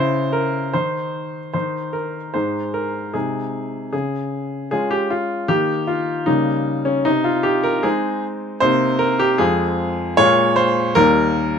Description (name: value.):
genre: classical-period piano sonatina.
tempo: 76 BPM.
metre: 2/4.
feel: straight.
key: Ab major.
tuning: A4 = 438 Hz.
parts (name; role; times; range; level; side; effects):
clear baby grand piano; solo; 0.0-11.6 s; Eb2 to Db5; -17 LUFS; equal; none.
room: light reverb.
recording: close, detailed microphones.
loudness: -17 LUFS.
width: side -7 dB against mid.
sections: 0.0-2.4 A section; 2.4-11.6 B section.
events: none.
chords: 0.0 Dbm; 0.7 N.C.; 2.4 Ab; 3.1 Ab/C; 3.9 Db; 5.5 Eb; 6.3 Eb7/Db; 7.1 Ab/C; 8.6 Cm7; 9.4 Fm; 10.2 Bbm7; 11.0 Eb.